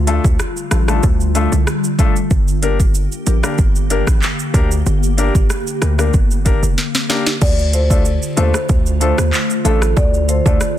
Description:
dancehall; 94 BPM; 4/4; straight; D minor; A4 = 439 Hz
glassy FM pad; sustained chords; 0.0-10.8 s; D3 to G4; -22 LUFS; left 1 dB; ensemble chorus, built-in reverb, phaser, sidechain pumping
hard-hitting 808-style bass; bass; 0.0-10.6 s; F1 to Eb2; -16 LUFS; equal
warm grand piano; accompaniment; 0.1-10.6 s; A3 to Bb4; -23 LUFS; left 6 dB
afro-pop drum kit; drums; 0.1-10.8 s; crash cymbal, handclaps, hi-hat, kick drum, rim click, shaker, snare drum; -16 LUFS; equal
marimba with soft mallets; melody; 7.4-10.6 s; A4 to D5; -20 LUFS; equal
little or no reverb; dense, heavily limited modern master; -13 LUFS; side -12 dB against mid
0.0-7.4 A section; 7.4-10.8 B section
drum fill 6.8-7.4
0.0 Dm; 2.3 Gm; 7.4 Dm
0.40 1.03 1.67 | 2.31 2.95 3.59 4.22 | 4.86 5.50 6.14 6.78 | 7.42 8.05 8.69 9.33 | 9.97 10.61

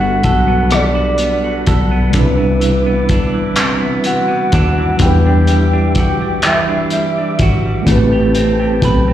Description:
slow six-eight R&B; 42 BPM (dotted quarters); 6/8; straight; A4 = 440 Hz
soft octave-layered synth lead; melody; 0.0-7.5 s; D5 to G5; -18 LUFS; equal; chorus, tremolo, slapback echo
semi-hollow electric guitar; second line; 0.0-9.1 s; C3 to B4; -20 LUFS; right 2 dB; slapback echo
mellow tine electric piano; accompaniment; 0.0-9.1 s; C3 to B4; -18 LUFS; equal; medium stereo tremolo, slapback echo
tonewheel organ; sustained chords; 0.0-9.1 s; G3 to D6; -26 LUFS; equal; chorus vibrato, slow rotary speaker
vintage muted fingered electric bass; bass; 0.0-9.1 s; G1 to G2; -16 LUFS; equal
cloth-damped thuddy drum kit; drums; 0.2-9.0 s; handclaps, hi-hat, kick drum, rim click; -17 LUFS; left 1 dB
light reverb, studio ambience; live gig heard through the venue's PA, recital hall reverb; -11 LUFS; side -11 dB against mid
0.0-9.1 A section
0.0 Gmaj9; 2.1 Cmaj9; 5.0 Em9; 7.9 Am9
0.72 | 2.15 3.58 | 5.00 6.43 | 7.86

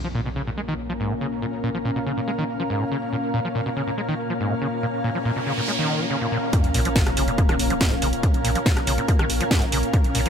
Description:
driving peak-time techno; 141 BPM; 4/4; straight; Bb minor; A4 = 440 Hz
overdriven acid bass; riff; 0.0-10.3 s; Ab2 to Ab3; -27 LUFS; equal; wide subtle chorus, cassette tape, sidechain pumping, digital delay
metallic inharmonic drone; drone; 0.4-10.3 s; Bb2 to Bb3; -30 LUFS; left 3 dB; chorus, built-in reverb, sidechain pumping
impact, noise sweep and sub drop; sound effects; 0.0-1.4, 5.0-8.2 s; -31 LUFS; right 1 dB
granular cloud pad; texture; 0.6-10.3 s; Db4 to F5; -28 LUFS; right 1 dB; built-in reverb, sidechain pumping
electronic kick drum; drums; 6.5-10.0 s; -21 LUFS; equal
techno drum kit; drums; 6.5-10.3 s; hi-hat, rim click, snare drum; -26 LUFS; right 1 dB; sidechain pumping on hats, sidechain pumping on cymbals
warm sub bass; bass; 6.6-10.3 s; Bb1; -26 LUFS; equal; tube saturation, sidechain pumping, low-pass filter
light reverb; -20 LUFS; side -7 dB against mid
0.0-6.5 A section; 6.5-10.3 B section
impact 0.0-1.4, 6.5-8.2; noise sweep 5.0-6.5; drop 6.5-10.3
0.0 Bbm
0.15 0.57 1.00 | 1.43 1.85 2.28 2.70 | 3.13 3.55 3.98 4.40 | 4.83 5.25 5.68 6.11 | 6.53 6.96 7.38 7.81 | 8.23 8.66 9.08 9.51 | 9.94

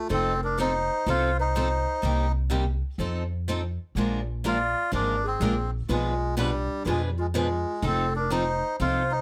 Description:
acoustic string swing (jazz manouche); 124 BPM; 4/4; swing 65% on 8ths; A4 = 440 Hz
melodica; melody; 0.0-9.2 s; G3 to F4; -30 LUFS; equal
breathy clarinet; second line; 0.0-9.2 s; D4 to D5; -34 LUFS; equal
picked steel-string acoustic guitar; accompaniment; 0.1-9.0 s; B2 to B4; -33 LUFS; equal
picked steel-string acoustic guitar; accompaniment; 0.1-9.0 s; B2 to B4; -37 LUFS; equal
upright bass; bass; 0.1-9.2 s; F1 to F2; -31 LUFS; equal
light reverb; close, detailed microphones, faint mains hum; -26 LUFS; mono
0.0-9.2 A section
0.0 F7; 2.0 Cm7; 3.0 F7; 4.0 Bb7; 5.9 Bdim7; 7.8 F7
| 0.10 0.59 1.07 1.55 | 2.04 2.52 3.00 3.49 | 3.97 4.45 4.93 5.42 | 5.90 6.38 6.87 7.35 | 7.83 8.31 8.80

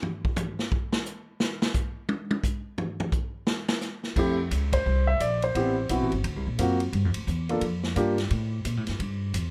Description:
jazz piano trio; 174 BPM; 4/4; swing 63% on 8ths; F major; A4 = 443 Hz
swinging big-band drum kit; drums; 0.0-9.4 s; crash cymbal, hi-hat, kick drum, ride cymbal, snare drum, toms; -32 LUFS; equal
warm grand piano; melody; 4.2-8.2 s; A3 to E5; -28 LUFS; equal; plate reverb
upright bass; bass; 4.2-9.5 s; G1 to Bb2; -30 LUFS; equal
light reverb; -27 LUFS; mono
0.0-4.2 A section; 4.2-9.5 B section
drum solo 0.0-4.2; band accent 4.7
0.0 N.C.; 4.2 Fmaj7(no3); 5.5 Am9; 6.2 D7alt; 6.9 Gm7; 8.3 A5
| 0.04 0.38 0.72 1.07 | 1.41 1.76 2.10 2.45 | 2.79 3.13 3.48 3.82 | 4.17 4.51 4.86 5.20 | 5.55 5.89 6.24 6.58 | 6.93 7.27 7.62 7.96 | 8.30 8.65 8.99 9.34

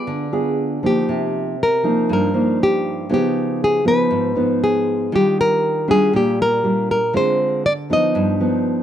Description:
bossa nova; 119 BPM; 4/4; straight; Eb major; A4 = 439 Hz
nylon-string guitar; melody; 0.0-8.8 s; G4 to Eb5; -19 LUFS; left 1 dB
nylon-string guitar; accompaniment; 0.0-8.8 s; G2 to Ab4; -19 LUFS; right 1 dB
small room ambience; dry, close 1970s-style studio recording; -16 LUFS; side -10 dB against mid
0.0-8.8 A section
0.0 G7b9 (rootless); 1.1 Cm7; 3.1 Db9; 5.1 Ebmaj9; 7.1 Dm7b5; 8.2 Gaug7
0.06 0.56 | 1.07 1.58 2.08 2.59 | 3.09 3.60 4.11 4.61 | 5.12 5.62 6.13 6.63 | 7.14 7.64 8.15 8.66

